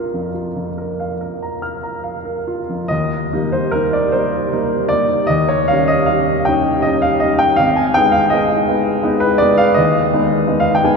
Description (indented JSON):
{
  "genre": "classical, romantic nocturne for solo piano",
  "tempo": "46-58 BPM (dotted quarters)",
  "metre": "12/8",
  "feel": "rubato",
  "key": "Eb major",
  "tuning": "A4 = 440 Hz",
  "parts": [
    { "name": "warm baby grand piano", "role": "solo", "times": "0.0-11.0 s", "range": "Ab1 to F6", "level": "-14 LUFS", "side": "equal", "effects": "none" }
  ],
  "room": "wet cathedral reverb, RT60 4.8 s",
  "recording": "minimal, uncompressed stereo recording",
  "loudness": "-14 LUFS",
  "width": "side -4 dB against mid",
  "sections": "0.0-2.9 A section; 2.9-11.0 B section",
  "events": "none",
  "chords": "0.0 Bb; 2.9 Eb; 5.3 Eb7; 7.6 Abm"
}